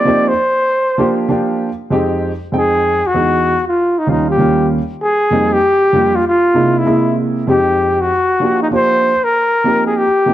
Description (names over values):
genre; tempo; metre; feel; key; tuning
hip hop; 97 BPM; 4/4; swing 63% on 16ths; F dorian; A4 = 440 Hz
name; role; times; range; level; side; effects
breathy flugelhorn; melody; 0.0-10.3 s; Eb4 to D5; -13 LUFS; left 1 dB; none
dark concert grand piano; accompaniment; 0.0-10.3 s; Eb2 to G5; -16 LUFS; right 1 dB; none
room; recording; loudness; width
moderate echo chamber reverb, RT60 1.7 s; dark, warm production; -12 LUFS; side -13 dB against mid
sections
0.0-2.5 A section; 2.5-10.3 B section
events
flugelhorn solo 0.0-2.5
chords
0.1 F13sus4; 1.3 Gm7/F; 1.9 Fm9; 3.2 Emaj9; 3.8 Ebadd9; 5.0 Fm11; 6.2 C7alt; 7.5 Fm9; 8.1 Bb69/F; 9.3 F9sus4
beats
| 0.06 0.68 1.30 1.92 | 2.53 3.15 3.77 4.39 | 5.01 5.63 6.25 6.86 | 7.48 8.10 8.72 9.34 | 9.96